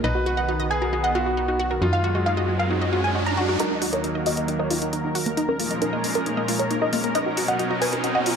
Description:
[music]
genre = uplifting trance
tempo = 135 BPM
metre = 4/4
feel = straight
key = Eb minor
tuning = A4 = 440 Hz
[part]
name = wide unison pluck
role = melody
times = 0.0-8.3 s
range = Bb3 to Bb5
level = -26 LUFS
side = equal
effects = ping-pong delay
[part]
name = bright concert grand piano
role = second line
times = 0.0-3.5 s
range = F4 to B4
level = -29 LUFS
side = equal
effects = tape echo
[part]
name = dark grand piano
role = second line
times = 0.0-8.3 s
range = Bb3 to Bb5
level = -32 LUFS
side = left 1 dB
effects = none
[part]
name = lush unison pad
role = sustained chords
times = 0.0-8.4 s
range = Eb2 to Bb4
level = -27 LUFS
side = right 1 dB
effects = chorus
[part]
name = wide unison pluck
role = arpeggios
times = 0.0-8.3 s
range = D#4 to D#5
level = -30 LUFS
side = left 1 dB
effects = tape echo
[part]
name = tight sequencer bass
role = bass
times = 0.0-3.6 s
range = B1 to Gb2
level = -26 LUFS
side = equal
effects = none
[part]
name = riser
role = sound effects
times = 1.6-8.4 s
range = none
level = -32 LUFS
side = right 2 dB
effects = none
[part]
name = electronic hi-hat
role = drums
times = 3.6-8.3 s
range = none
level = -30 LUFS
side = left 1 dB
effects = none
[sound]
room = moderate digital room reverb, RT60 1.4 s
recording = none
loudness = -21 LUFS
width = side -6 dB against mid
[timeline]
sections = 0.0-3.6 A section; 3.6-8.4 B section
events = filter sweep on analog synth pad 0.0-3.6; riser 1.6-3.6, 3.6-8.4; build-up 3.6-8.4; filter sweep on synth pluck 3.6-8.4; filter sweep on synth arpeggio sound 3.6-8.4; filter sweep on grand piano 3.6-8.4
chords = 0.0 Bmaj7; 1.8 Gbadd9; 3.6 Ebm; 5.4 Bbm7; 7.2 Bmaj7

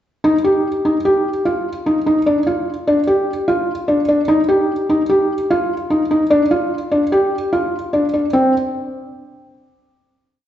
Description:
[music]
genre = progressive instrumental, progressive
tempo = 148 BPM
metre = 5/4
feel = straight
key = unclear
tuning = A4 = 440 Hz
[part]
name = felt-muted upright piano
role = solo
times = 0.2-8.5 s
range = C4 to G4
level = -14 LUFS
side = equal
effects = none
[sound]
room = wet recital hall reverb, RT60 1.7 s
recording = recorded in a church or concert hall, nothing above 7.8 kHz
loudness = -14 LUFS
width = side -11 dB against mid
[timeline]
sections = 0.2-8.3 groove; 8.3-10.4 final note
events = none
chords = none

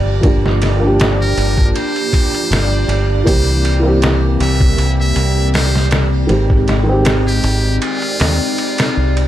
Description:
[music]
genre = trip hop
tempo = 79 BPM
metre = 4/4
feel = swing 54% on 16ths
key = G phrygian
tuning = A4 = 440 Hz
[part]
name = felt-muted upright piano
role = accompaniment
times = 0.0-9.3 s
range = Eb3 to G4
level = -19 LUFS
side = right 1 dB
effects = harmonic tremolo, vintage 12-bit sampler grit
[part]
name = warbly tape-like pad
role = sustained chords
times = 0.0-9.3 s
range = Eb3 to G4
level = -22 LUFS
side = equal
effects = chorus, built-in reverb
[part]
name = deep dub fingered electric bass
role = bass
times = 0.0-9.3 s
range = G1 to Eb2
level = -15 LUFS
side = equal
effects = none
[part]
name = backwards swelling texture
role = texture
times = 0.0-9.3 s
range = D5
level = -28 LUFS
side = equal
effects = built-in reverb
[part]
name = trip hop sampler-style drum kit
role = drums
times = 0.2-9.3 s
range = hi-hat, kick drum, ride cymbal, snare drum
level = -18 LUFS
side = equal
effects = none
[part]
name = trumpet with metal mute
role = melody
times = 1.2-9.2 s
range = F4 to E5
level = -22 LUFS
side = equal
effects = tape echo
[sound]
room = little or no reverb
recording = none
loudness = -12 LUFS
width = side -12 dB against mid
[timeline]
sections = 0.0-9.3 A section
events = none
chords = 0.0 Gm7; 3.3 C7; 6.3 Abmaj7

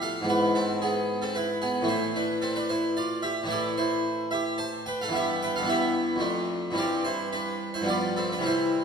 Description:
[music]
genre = classical, baroque-style suite movement for harpsichord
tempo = 111 BPM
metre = 3/4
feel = rubato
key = A minor, C major from 3.5 s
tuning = A4 = 444 Hz
[part]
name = harpsichord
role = solo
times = 0.0-8.8 s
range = F2 to A5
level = -25 LUFS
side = equal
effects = none
[sound]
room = wet scoring stage reverb, RT60 1.4 s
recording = heard from further back in the room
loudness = -25 LUFS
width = side -6 dB against mid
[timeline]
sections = 0.0-8.8 A section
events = none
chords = 0.3 E/G#; 1.9 Am; 5.1 Em/G; 6.2 Dm/F; 6.8 C/G; 7.9 G7

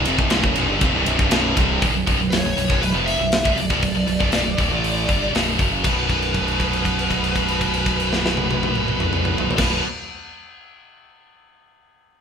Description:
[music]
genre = heavy metal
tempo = 119 BPM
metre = 4/4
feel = straight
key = B minor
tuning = A4 = 440 Hz
[part]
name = fuzz guitar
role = riff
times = 0.0-1.8 s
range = B1 to D3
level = -25 LUFS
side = equal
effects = distortion
[part]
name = heavy high-gain guitar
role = riff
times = 0.0-9.8 s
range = B1 to A3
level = -24 LUFS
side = left 9 dB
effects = distortion
[part]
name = heavy high-gain guitar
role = riff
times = 0.0-9.8 s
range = B1 to A3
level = -23 LUFS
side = right 8 dB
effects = distortion
[part]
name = growling picked electric bass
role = bass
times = 0.0-9.8 s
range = B0 to A1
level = -27 LUFS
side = equal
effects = overdrive
[part]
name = tight metal drum kit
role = drums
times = 0.1-9.7 s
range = crash cymbal, hi-hat, kick drum, ride cymbal, snare drum, toms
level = -22 LUFS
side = equal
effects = none
[part]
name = high-gain lead guitar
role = melody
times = 2.3-9.8 s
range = B4 to E5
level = -26 LUFS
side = left 1 dB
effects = distortion
[sound]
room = moderate large studio reverb, RT60 1.1 s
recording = band playing live in one room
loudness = -17 LUFS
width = side -7 dB against mid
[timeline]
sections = 0.0-1.8 A section; 1.8-5.8 B section; 5.8-9.9 C section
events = held note 5.8-9.6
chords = 0.0 Bm; 5.8 B5

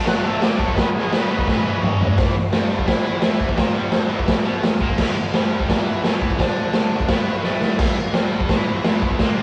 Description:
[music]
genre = garage rock duo or trio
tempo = 171 BPM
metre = 4/4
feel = straight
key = unclear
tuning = A4 = 440 Hz
[part]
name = biting overdriven guitar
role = riff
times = 0.0-9.4 s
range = E2 to E4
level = -28 LUFS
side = equal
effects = none
[part]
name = combo organ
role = melody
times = 0.1-1.8 s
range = G#4 to F#5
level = -30 LUFS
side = equal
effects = none
[part]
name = raw garage drum kit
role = drums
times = 0.1-9.3 s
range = crash cymbal, hi-hat, kick drum, snare drum, toms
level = -20 LUFS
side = equal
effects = vintage 12-bit sampler grit
[sound]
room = moderate stone room reverb, RT60 1.0 s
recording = rough rehearsal-room recording, cassette tape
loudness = -20 LUFS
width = mono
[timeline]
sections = 0.0-2.2 A section; 2.2-7.8 B section; 7.8-9.4 B section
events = drum fill 1.5-2.2, 7.4-7.8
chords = 0.0 D; 0.8 B; 1.5 C#m; 2.2 E5

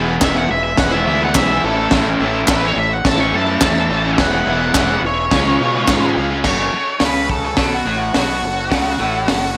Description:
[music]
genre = garage rock duo or trio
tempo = 106 BPM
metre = 4/4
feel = straight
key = F# minor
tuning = A4 = 440 Hz
[part]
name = combo organ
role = sustained chords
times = 0.0-9.5 s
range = E4 to E5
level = -29 LUFS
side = equal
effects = none
[part]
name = crunchy overdriven guitar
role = riff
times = 0.0-9.5 s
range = F#2 to E#4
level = -22 LUFS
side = equal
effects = none
[part]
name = fuzz fingered electric bass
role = bass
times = 0.0-9.5 s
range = E1 to B2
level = -25 LUFS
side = equal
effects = overdrive
[part]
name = octave-fuzz lead guitar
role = melody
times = 0.2-9.6 s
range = F#4 to C#6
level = -22 LUFS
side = equal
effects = distortion
[part]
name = crunchy breakbeat drum kit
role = drums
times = 0.2-9.4 s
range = crash cymbal, hi-hat, kick drum, snare drum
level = -21 LUFS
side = equal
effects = none
[part]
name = group handclap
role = percussion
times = 0.2-6.0 s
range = none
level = -24 LUFS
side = equal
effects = none
[sound]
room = light reverb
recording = none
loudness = -16 LUFS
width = mono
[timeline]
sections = 0.0-6.4 A section; 6.4-9.6 B section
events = lead electric guitar solo 6.4-9.6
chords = 0.0 E; 1.6 A; 4.2 E; 5.3 C#; 6.4 F#m

